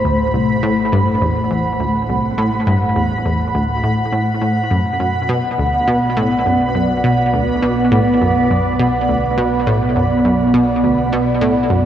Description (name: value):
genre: ambient, sequencer-driven space music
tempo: 103 BPM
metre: 4/4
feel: straight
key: unclear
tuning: A4 = 438 Hz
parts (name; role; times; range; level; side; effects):
- sweeping resonant pad; sustained chords; 0.0-11.9 s; A2 to F#5; -16 LUFS; right 1 dB; lush chorus, shimmer reverb
- round analog bass; bass; 0.0-11.9 s; A1 to B1; -32 LUFS; equal; none
- bubbling stepped-filter texture; texture; 0.0-11.9 s; B5; -25 LUFS; right 2 dB; chorus, built-in reverb, shimmer reverb
- analog pluck; riff; 0.1-11.8 s; C2 to B2; -18 LUFS; equal; chorus, tape echo, shimmer reverb
room: wet lush hall reverb, RT60 2.8 s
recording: worn, warbling old tape, cassette tape, warbly pitch drift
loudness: -14 LUFS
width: side -10 dB against mid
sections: 0.0-11.9 A section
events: fade-in on analog synth bass 0.0-11.9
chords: 0.0 Am; 4.7 Bm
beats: | 0.05 0.64 1.22 1.80 | 2.38 2.97 3.55 4.13 | 4.71 5.30 5.88 6.46 | 7.04 7.63 8.21 8.79 | 9.38 9.96 10.54 11.12 | 11.71